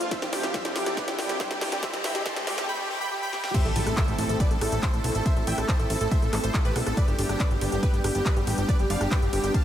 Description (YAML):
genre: uplifting trance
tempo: 140 BPM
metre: 4/4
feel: straight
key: A minor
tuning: A4 = 440 Hz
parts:
  - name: dense compressed supersaw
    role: melody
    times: 0.0-9.6 s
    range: E4 to B5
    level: -30 LUFS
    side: right 1 dB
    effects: sidechain pumping, diffuse ambient delay
  - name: lush unison pad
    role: sustained chords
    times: 0.0-9.6 s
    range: C3 to G4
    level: -33 LUFS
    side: equal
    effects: chorus, sidechain pumping
  - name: plucky analog bass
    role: bass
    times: 0.0-9.5 s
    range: F1 to D2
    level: -29 LUFS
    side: equal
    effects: sidechain pumping, high-pass filter
  - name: techno drum kit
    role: drums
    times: 0.0-9.6 s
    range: crash cymbal, handclaps, hi-hat, ride cymbal, rim click, snare drum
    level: -32 LUFS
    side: equal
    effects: none
  - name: riser and impact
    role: sound effects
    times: 0.0-5.3 s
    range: none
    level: -36 LUFS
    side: equal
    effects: none
  - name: electronic kick drum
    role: drums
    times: 0.1-9.6 s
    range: none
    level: -25 LUFS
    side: equal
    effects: none
  - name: wide unison pluck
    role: second line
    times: 3.5-9.6 s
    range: G4 to A5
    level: -36 LUFS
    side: equal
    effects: none
room: moderate huge ambient reverb, RT60 7.9 s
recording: dreamy mix soaked in reverb, high-pass filter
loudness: -23 LUFS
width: side -11 dB against mid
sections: 0.0-3.5 A section; 3.5-9.6 B section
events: build-up 0.0-3.5; drum fill 0.0-2.7, 3.3; riser 0.0-2.7; drop 3.5-9.6; impact 3.5-5.3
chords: 0.1 Cadd9; 3.5 Am; 7.0 G